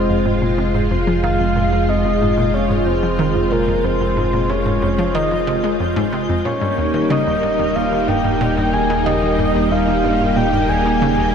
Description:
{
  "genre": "ambient, sequencer-driven space music",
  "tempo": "92 BPM",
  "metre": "4/4",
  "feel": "straight",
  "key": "F minor",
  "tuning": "A4 = 439 Hz",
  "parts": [
    { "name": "soft octave-layered synth lead", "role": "melody", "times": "0.0-11.3 s", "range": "Bb4 to Ab5", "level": "-21 LUFS", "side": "left 2 dB", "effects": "chorus, ping-pong delay" },
    { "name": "string machine, full ensemble", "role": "sustained chords", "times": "0.0-11.3 s", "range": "G3 to F4", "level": "-19 LUFS", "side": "right 1 dB", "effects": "ensemble chorus" },
    { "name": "analog pluck", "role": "riff", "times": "0.0-11.3 s", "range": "Eb2 to Ab3", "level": "-22 LUFS", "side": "right 1 dB", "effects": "chorus, ping-pong delay" },
    { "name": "round analog bass", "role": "bass", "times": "0.0-11.3 s", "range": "Eb1 to F1", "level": "-24 LUFS", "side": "equal", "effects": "none" },
    { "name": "twinkling granular texture", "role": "texture", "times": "0.0-11.3 s", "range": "G6", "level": "-37 LUFS", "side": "left 2 dB", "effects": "built-in reverb, lush chorus" }
  ],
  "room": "wet lush hall reverb, RT60 2.7 s",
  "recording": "dreamy mix soaked in reverb, cassette tape",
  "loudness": "-15 LUFS",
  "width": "side -7 dB against mid",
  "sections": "0.0-11.3 A section",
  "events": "none",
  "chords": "0.0 Fm; 6.5 Eb",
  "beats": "0.58 | 1.23 1.89 2.54 3.19 | 3.84 4.50 5.15 5.80 | 6.45 7.10 7.76 8.41 | 9.06 9.71 10.37 11.02"
}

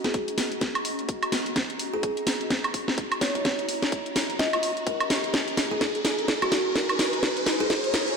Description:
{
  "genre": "bass house",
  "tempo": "127 BPM",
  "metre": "4/4",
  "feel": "swing 59% on 16ths",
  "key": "Eb minor",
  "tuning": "A4 = 444 Hz",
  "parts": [
    { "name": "kalimba", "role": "melody", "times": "0.0-7.9 s", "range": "Gb4 to Eb5", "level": "-30 LUFS", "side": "equal", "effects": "ping-pong delay" },
    { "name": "garage drum kit", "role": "drums", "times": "0.0-8.2 s", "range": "hi-hat, snare drum, woodblock", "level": "-26 LUFS", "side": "equal", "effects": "none" },
    { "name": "riser", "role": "sound effects", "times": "0.3-8.2 s", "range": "none", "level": "-33 LUFS", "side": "equal", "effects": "none" },
    { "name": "ethereal airy pad", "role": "texture", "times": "0.0-8.2 s", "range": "Db4 to Bb5", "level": "-34 LUFS", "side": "left 1 dB", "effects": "ensemble chorus, built-in reverb, sidechain pumping" },
    { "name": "electronic kick drum", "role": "drums", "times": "0.1-7.8 s", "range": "none", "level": "-32 LUFS", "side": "equal", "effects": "high-pass filter on kick" }
  ],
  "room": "wet lush hall reverb, RT60 1.8 s, digital ambience",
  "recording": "dreamy mix soaked in reverb",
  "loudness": "-23 LUFS",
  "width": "side -5 dB against mid",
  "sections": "0.0-8.2 A section",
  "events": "build-up 0.0-8.2; drum fill 0.0-8.2; riser 0.3-8.2",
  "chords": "0.0 Ebm7",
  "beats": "0.14 0.61 1.09 | 1.56 2.03 2.50 2.98 | 3.45 3.92 4.39 4.87 | 5.34 5.81 6.28 6.76 | 7.23 7.70"
}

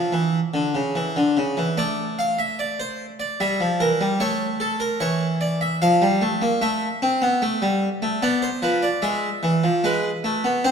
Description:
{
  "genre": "classical, baroque-style two-part invention for harpsichord",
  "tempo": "74 BPM",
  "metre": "3/4",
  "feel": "straight",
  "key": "D minor",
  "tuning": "A4 = 440 Hz",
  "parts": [
    { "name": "harpsichord", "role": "solo", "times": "0.0-10.7 s", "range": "C#3 to F5", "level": "-20 LUFS", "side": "equal", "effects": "none" }
  ],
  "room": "moderate concert hall reverb, RT60 2.4 s",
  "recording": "minimal, uncompressed stereo recording",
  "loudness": "-20 LUFS",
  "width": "side -6 dB against mid",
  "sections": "0.0-1.8 A section; 1.8-10.7 B section",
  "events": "none",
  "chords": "0.0 C#m; 1.8 D5/A; 3.4 Edim; 4.2 A; 5.8 Fadd9; 6.6 Am; 8.2 Bdim; 9.0 E",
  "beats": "0.13 0.95 | 1.77 2.59 3.39 | 4.20 5.01 5.82 | 6.62 7.42 8.23 | 9.03 9.84 10.65"
}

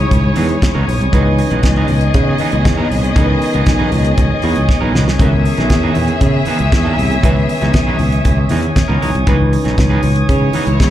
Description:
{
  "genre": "disco",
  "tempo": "118 BPM",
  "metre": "4/4",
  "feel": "straight",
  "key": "C# dorian",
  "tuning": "A4 = 437 Hz",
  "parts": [
    { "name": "warm studio string section", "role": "second line", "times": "0.0-10.9 s", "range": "G#3 to E5", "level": "-21 LUFS", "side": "left 1 dB", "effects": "slapback echo" },
    { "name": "electric guitar at the edge of break-up", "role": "accompaniment", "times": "0.0-10.8 s", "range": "E3 to A#4", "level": "-24 LUFS", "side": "right 8 dB", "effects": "slapback echo" },
    { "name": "reed electric piano", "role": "accompaniment", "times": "0.0-10.9 s", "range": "D#3 to B4", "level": "-21 LUFS", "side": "left 2 dB", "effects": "slapback echo" },
    { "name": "tonewheel organ", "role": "sustained chords", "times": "0.0-10.9 s", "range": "C#5 to D#6", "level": "-22 LUFS", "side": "right 1 dB", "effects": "slow rotary speaker" },
    { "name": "modern bright fingered electric bass", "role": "bass", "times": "0.0-10.9 s", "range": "B1 to C#3", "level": "-15 LUFS", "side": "equal", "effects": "none" },
    { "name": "damped 70s drum kit", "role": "drums", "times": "0.1-10.9 s", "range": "hi-hat, kick drum, snare drum", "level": "-16 LUFS", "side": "equal", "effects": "none" },
    { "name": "congas", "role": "percussion", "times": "0.1-10.9 s", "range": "none", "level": "-26 LUFS", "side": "left 4 dB", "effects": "none" }
  ],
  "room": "studio ambience",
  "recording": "live gig heard through the venue's PA, club reverb",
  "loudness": "-11 LUFS",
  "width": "side -12 dB against mid",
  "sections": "0.0-10.9 A section",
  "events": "drum fill 4.7-5.2",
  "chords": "0.0 C#m9",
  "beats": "0.11 0.62 | 1.13 1.64 2.14 2.65 | 3.16 3.67 4.18 4.69 | 5.20 5.70 6.21 6.72 | 7.23 7.74 8.25 8.76 | 9.27 9.78 10.29 10.80"
}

